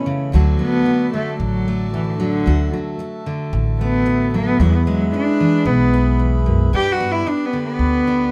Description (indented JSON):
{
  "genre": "acoustic folk duo or small band",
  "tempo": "112 BPM",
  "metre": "4/4",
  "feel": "straight",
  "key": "D major",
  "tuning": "A4 = 440 Hz",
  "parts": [
    { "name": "warm cello", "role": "melody", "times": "0.0-8.3 s", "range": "D3 to G4", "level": "-21 LUFS", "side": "equal", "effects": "none" },
    { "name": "fingerpicked steel-string acoustic guitar", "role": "accompaniment", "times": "0.0-8.3 s", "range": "D2 to F#4", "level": "-24 LUFS", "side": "equal", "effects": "none" },
    { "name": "hand-pumped harmonium", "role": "sustained chords", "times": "0.0-8.3 s", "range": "E4 to B5", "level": "-31 LUFS", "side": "equal", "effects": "none" },
    { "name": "upright bass", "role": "bass", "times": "0.3-8.3 s", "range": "A1 to G2", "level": "-21 LUFS", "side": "equal", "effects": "none" }
  ],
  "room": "light reverb",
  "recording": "none",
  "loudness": "-18 LUFS",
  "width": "mono",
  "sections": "0.3-8.3 A section",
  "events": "cello solo 0.3-8.3",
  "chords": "0.3 D; 4.6 E; 6.7 G",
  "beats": "| 0.34 0.87 1.40 1.94 | 2.47 3.00 3.54 4.07 | 4.61 5.14 5.67 6.20 | 6.74 7.27 7.80"
}